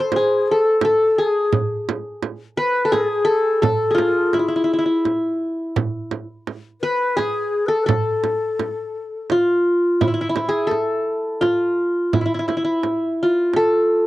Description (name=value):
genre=Arabic maqam ensemble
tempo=85 BPM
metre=3/4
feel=straight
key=A maqam nahawand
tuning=A4 = 440 Hz
part: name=qanun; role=melody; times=0.0-14.1 s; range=E4 to C5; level=-18 LUFS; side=equal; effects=cassette tape
part: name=breathy reedy ney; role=second line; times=0.0-9.3 s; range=E4 to B4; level=-24 LUFS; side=left 5 dB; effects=cassette tape
part: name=frame drum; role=percussion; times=0.1-13.7 s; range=none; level=-24 LUFS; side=right 5 dB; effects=none
room=moderate booth ambience, RT60 0.2 s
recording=home recording on cassette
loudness=-17 LUFS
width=side -16 dB against mid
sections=0.0-10.0 A section; 10.0-14.1 B section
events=none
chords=none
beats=0.12 0.82 | 1.53 2.23 2.94 | 3.64 4.35 5.05 | 5.76 6.46 7.17 | 7.88 8.58 9.29 | 10.00 10.70 11.41 | 12.12 12.83 13.54